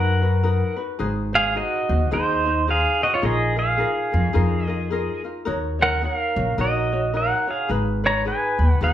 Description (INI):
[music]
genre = Hawaiian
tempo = 108 BPM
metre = 4/4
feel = swing 61% on 8ths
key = Eb minor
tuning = A4 = 440 Hz
[part]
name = pedal steel guitar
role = melody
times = 0.0-8.9 s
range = Eb4 to Bb5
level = -21 LUFS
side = right 1 dB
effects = none
[part]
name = ukulele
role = accompaniment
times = 0.0-8.9 s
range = D#4 to Db5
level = -28 LUFS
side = left 3 dB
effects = none
[part]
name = upright bass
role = bass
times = 0.0-8.9 s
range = Ab1 to F#2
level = -22 LUFS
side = equal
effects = none
[sound]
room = moderate large studio reverb, RT60 0.8 s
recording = band playing live in one room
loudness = -19 LUFS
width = side -11 dB against mid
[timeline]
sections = 0.0-8.9 A section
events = none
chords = 0.0 Bmaj7; 1.0 Ab7; 3.2 Bb7sus4; 5.5 Ebm7; 7.7 Abm7